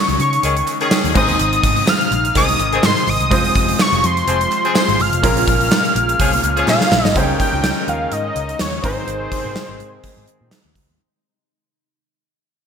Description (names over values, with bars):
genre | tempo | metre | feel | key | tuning
1980s-style pop | 125 BPM | 4/4 | swing 55% on 16ths | unclear | A4 = 440 Hz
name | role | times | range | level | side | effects
fat analog lead | melody | 0.0-10.5 s | C5 to F6 | -18 LUFS | equal | chorus, ping-pong delay
bright baby grand piano | accompaniment | 0.0-11.0 s | Ab2 to Db5 | -25 LUFS | right 1 dB | none
glassy FM pad | sustained chords | 0.0-11.0 s | C3 to F4 | -26 LUFS | equal | ensemble chorus, built-in reverb
vintage muted picked electric bass | bass | 0.1-11.0 s | F1 to Db3 | -22 LUFS | equal | none
gated 80s drum kit | drums | 0.1-10.9 s | crash cymbal, hi-hat, kick drum, snare drum, tambourine | -19 LUFS | right 1 dB | gated reverb
clear horn section | stabs | 0.4-10.7 s | Eb3 to Bb4 | -24 LUFS | left 4 dB | ping-pong delay
group handclap | percussion | 0.7-6.8 s | none | -36 LUFS | left 3 dB | none
room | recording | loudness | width
moderate lush hall reverb, RT60 2.1 s | bright 1980s-style digital production | -14 LUFS | side -7 dB against mid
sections
0.0-7.2 A section; 7.2-11.0 B section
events
drum fill 6.7-7.2; fade-out 7.2-11.0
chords
0.0 Dbsus2; 1.2 Ab; 3.3 Fm; 5.2 Bbm7; 7.2 Dbsus2; 8.8 Ab